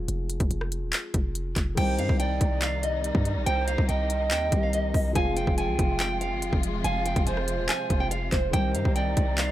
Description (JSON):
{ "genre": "hip hop, trap", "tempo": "142 BPM", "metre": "4/4", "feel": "half-time", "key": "C minor", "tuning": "A4 = 440 Hz", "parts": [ { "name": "dark concert grand piano", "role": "accompaniment", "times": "0.0-9.5 s", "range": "Eb3 to Ab4", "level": "-34 LUFS", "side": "left 4 dB", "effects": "none" }, { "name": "hard-hitting 808-style bass", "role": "bass", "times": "0.0-9.5 s", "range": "Eb1 to G2", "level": "-29 LUFS", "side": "equal", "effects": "none" }, { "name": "trap drum kit", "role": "drums", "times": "0.1-9.5 s", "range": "crash cymbal, handclaps, hi-hat, kick drum, rim click", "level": "-27 LUFS", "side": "equal", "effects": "none" }, { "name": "nylon-string guitar", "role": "melody", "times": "1.8-9.5 s", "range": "C5 to Ab5", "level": "-31 LUFS", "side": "right 2 dB", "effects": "none" }, { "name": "mellow hollow polished pan flute", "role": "second line", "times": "1.8-9.5 s", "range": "C5 to G5", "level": "-32 LUFS", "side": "right 4 dB", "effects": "tape echo" }, { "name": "warm symphonic string section", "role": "sustained chords", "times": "1.8-9.5 s", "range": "C3 to F4", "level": "-35 LUFS", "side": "left 2 dB", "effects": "none" } ], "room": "small room ambience", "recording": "none", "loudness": "-23 LUFS", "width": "side -13 dB against mid", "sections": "0.0-1.8 A section; 1.8-9.5 B section", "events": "break 0.0-1.8", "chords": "0.0 Fm; 1.8 Cm; 5.2 Fm; 8.5 Cm" }